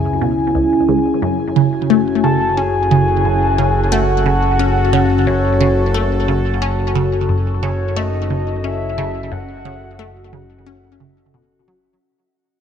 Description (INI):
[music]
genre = ambient, sequencer-driven space music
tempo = 89 BPM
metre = 4/4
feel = straight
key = F# minor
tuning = A4 = 440 Hz
[part]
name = sweeping resonant pad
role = sustained chords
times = 0.0-12.0 s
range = C#3 to G#5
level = -19 LUFS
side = left 1 dB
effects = chorus, phaser
[part]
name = resonant blip pluck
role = riff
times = 0.0-11.9 s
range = C#2 to C#4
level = -19 LUFS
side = right 1 dB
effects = phaser, tape echo
[part]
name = fat analog bass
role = bass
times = 0.0-12.0 s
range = F#1 to C#2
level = -20 LUFS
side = equal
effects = none
[part]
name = soft octave-layered synth lead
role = melody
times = 2.2-10.3 s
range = C#5 to A5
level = -21 LUFS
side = equal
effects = chorus, tape echo
[sound]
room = moderate plate reverb, RT60 2.8 s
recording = echo-heavy mix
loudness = -14 LUFS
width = side -8 dB against mid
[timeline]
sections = 0.0-12.0 A section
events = fade-out 4.8-12.0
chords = 0.0 C#m; 1.2 F#m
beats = 0.55 | 1.23 1.90 2.57 3.25 | 3.92 4.60 5.27 5.94 | 6.62 7.29 7.97 8.64 | 9.31 9.99 10.66 11.34